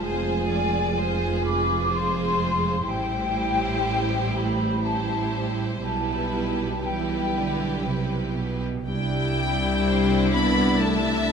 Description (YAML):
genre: cinematic, emotional film score for orchestra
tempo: 61 BPM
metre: 3/4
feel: uneven beats, rubato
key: C major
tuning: A4 = 440 Hz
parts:
  - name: mellow hollow flute section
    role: second line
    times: 0.0-7.9 s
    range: G5 to D6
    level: -28 LUFS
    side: left 3 dB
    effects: none
  - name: rich symphonic violin section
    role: second line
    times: 0.0-11.3 s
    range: F4 to E5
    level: -32 LUFS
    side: left 3 dB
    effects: none
  - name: rich studio viola section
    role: accompaniment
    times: 0.0-11.3 s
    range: G3 to Ab4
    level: -28 LUFS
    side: right 4 dB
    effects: none
  - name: rich symphonic cello section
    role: bass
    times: 0.0-11.3 s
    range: C2 to E3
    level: -30 LUFS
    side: right 2 dB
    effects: none
  - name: rich symphonic double bass section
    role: bass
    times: 0.0-11.3 s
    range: F1 to C2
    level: -29 LUFS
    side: right 2 dB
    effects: none
  - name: warm symphonic violin section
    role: melody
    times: 8.9-11.3 s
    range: G5 to B5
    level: -27 LUFS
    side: left 3 dB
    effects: none
  - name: mellow French horn section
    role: sustained chords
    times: 8.9-11.3 s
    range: G3 to B3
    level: -25 LUFS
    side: left 6 dB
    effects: none
room: moderate scoring stage reverb, RT60 1.8 s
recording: none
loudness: -22 LUFS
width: side -6 dB against mid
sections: 0.0-8.9 A section; 8.9-11.3 A section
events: none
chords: 0.0 Fm; 2.9 Am7; 5.8 Em/B; 8.9 Cadd9